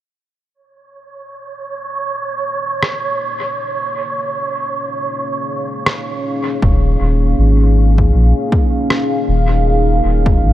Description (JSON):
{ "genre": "ambient dub", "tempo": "79 BPM", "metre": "4/4", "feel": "swing 58% on 16ths", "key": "unclear", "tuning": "A4 = 440 Hz", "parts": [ { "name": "deep dark ambient pad", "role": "sustained chords", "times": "3.2-10.5 s", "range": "Bb3 to F5", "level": "-20 LUFS", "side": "left 1 dB", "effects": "chorus, built-in reverb" }, { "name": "wind-like tuned noise texture", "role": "texture", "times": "1.1-6.6 s", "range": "Db5", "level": "-22 LUFS", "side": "right 3 dB", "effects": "built-in reverb" }, { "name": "electronic rim click", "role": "drums", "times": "2.8-9.1 s", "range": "none", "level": "-20 LUFS", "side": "equal", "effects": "low-pass filter on snare, studio reverb, dub echo" }, { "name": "soft dub sub bass", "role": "bass", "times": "6.6-10.5 s", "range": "Eb1 to Bb1", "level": "-12 LUFS", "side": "equal", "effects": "none" }, { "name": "electronic kick drum", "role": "drums", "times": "6.6-10.4 s", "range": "none", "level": "-14 LUFS", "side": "equal", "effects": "overdrive, studio reverb" } ], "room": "digital ambience", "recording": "none", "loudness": "-14 LUFS", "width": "side -14 dB against mid", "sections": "0.5-6.6 A section; 6.6-10.5 B section", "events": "filter sweep on ambient pad 0.5-6.6", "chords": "0.5 Eb5; 6.6 Bbm7/Eb" }